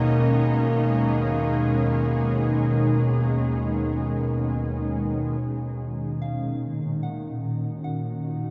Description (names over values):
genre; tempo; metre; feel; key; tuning
ambient; 74 BPM; 4/4; straight; Eb minor; A4 = 436 Hz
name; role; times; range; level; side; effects
ethereal airy pad; sustained chords; 0.0-8.5 s; D#2 to Gb4; -25 LUFS; equal; ensemble chorus, built-in reverb
analog drone; drone; 0.0-8.5 s; Bb2 to Bb3; -32 LUFS; equal; chorus
soft synth bell; arpeggios; 6.2-8.5 s; F5 to Gb5; -44 LUFS; equal; chorus, tape echo
room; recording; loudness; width
moderate lush hall reverb, RT60 2.8 s; cassette tape, nothing above 10.8 kHz; -24 LUFS; mono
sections
0.0-5.4 A section; 5.4-8.5 B section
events
none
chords
0.0 Badd9/D#; 5.4 Ebm7